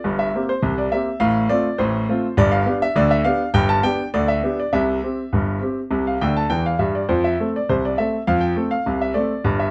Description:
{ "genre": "ragtime piano", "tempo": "102 BPM", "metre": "2/4", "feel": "straight", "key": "F major", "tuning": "A4 = 442 Hz", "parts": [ { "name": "clear grand piano", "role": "solo", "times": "0.0-9.7 s", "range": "G1 to A5", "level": "-20 LUFS", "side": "equal", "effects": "none" } ], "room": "light reverb", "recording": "none", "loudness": "-20 LUFS", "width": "mono", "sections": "0.0-9.7 A section", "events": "grand piano fill 6.2-7.1", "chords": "0.0 C5/G; 1.2 F/A; 2.4 G; 4.7 C; 7.1 F" }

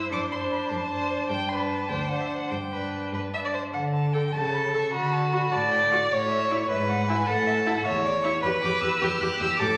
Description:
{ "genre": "quick classical-period movement for string quartet", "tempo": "102 BPM (dotted quarters)", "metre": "6/8", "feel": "straight", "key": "G major, D major from 3.7 s", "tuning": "A4 = 438 Hz", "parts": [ { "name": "clear violin", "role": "second line", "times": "0.0-9.8 s", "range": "F#4 to E5", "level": "-28 LUFS", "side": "equal", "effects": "none" }, { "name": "clear viola", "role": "accompaniment", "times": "0.0-9.7 s", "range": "D4 to A4", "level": "-35 LUFS", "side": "equal", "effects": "none" }, { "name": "warm violin", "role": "melody", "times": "0.1-9.8 s", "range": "C#5 to F#6", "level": "-33 LUFS", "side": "equal", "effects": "none" }, { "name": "rich cello", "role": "bass", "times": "0.1-9.7 s", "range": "D2 to D3", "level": "-33 LUFS", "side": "equal", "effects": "none" } ], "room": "wet recital hall reverb, RT60 1.8 s", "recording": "none", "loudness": "-26 LUFS", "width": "mono", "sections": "0.0-3.7 A section; 3.7-9.8 B section", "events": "none", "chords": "0.1 D7/F#; 1.3 G; 1.9 D7; 2.5 G; 3.7 D5; 4.3 A/C#; 4.9 D; 6.1 A; 6.7 E/G#; 7.3 A; 8.4 Em" }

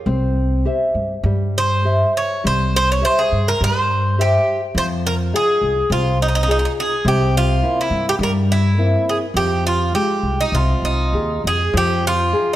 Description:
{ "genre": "fado-style ballad", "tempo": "103 BPM", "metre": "4/4", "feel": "rubato", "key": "F minor", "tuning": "A4 = 440 Hz", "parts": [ { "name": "nylon-string guitar", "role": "accompaniment", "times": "0.1-12.6 s", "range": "C3 to E5", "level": "-21 LUFS", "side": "left 2 dB", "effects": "none" }, { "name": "upright bass", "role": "bass", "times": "0.1-12.3 s", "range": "C2 to G2", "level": "-20 LUFS", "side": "equal", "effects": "none" }, { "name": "Irish bouzouki", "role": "melody", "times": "1.6-12.6 s", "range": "Eb4 to Db5", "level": "-19 LUFS", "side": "right 2 dB", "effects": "none" } ], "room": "moderate concert hall reverb, RT60 1.7 s", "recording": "none", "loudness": "-15 LUFS", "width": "side -14 dB against mid", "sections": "0.0-11.7 A section", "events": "none", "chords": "0.1 C; 4.8 Fm7; 7.0 C7; 9.3 Fmadd9; 11.7 Fm7" }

